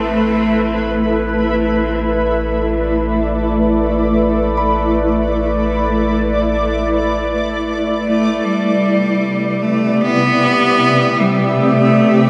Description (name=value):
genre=ambient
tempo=free time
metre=none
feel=none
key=A minor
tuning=A4 = 441 Hz
part: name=clear cello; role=melody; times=0.0-1.0, 8.1-12.3 s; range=G3 to B3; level=-18 LUFS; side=equal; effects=diffuse ambient delay
part: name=shimmering ambient pad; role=sustained chords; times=0.0-12.3 s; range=C3 to E5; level=-18 LUFS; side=equal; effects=chorus, built-in reverb
part: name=round analog bass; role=bass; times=0.0-8.4 s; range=A1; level=-26 LUFS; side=equal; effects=none
part: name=concert harp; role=arpeggios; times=4.6-12.3 s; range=G3 to B5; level=-29 LUFS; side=equal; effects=none
room=wet cathedral reverb, RT60 5.5 s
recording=none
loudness=-16 LUFS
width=mono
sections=0.0-8.5 A section; 8.5-12.3 B section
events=fade-in on analog synth bass 0.0-8.5; filter sweep on ambient pad 0.0-8.5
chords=0.0 Asus2; 8.5 Cmaj9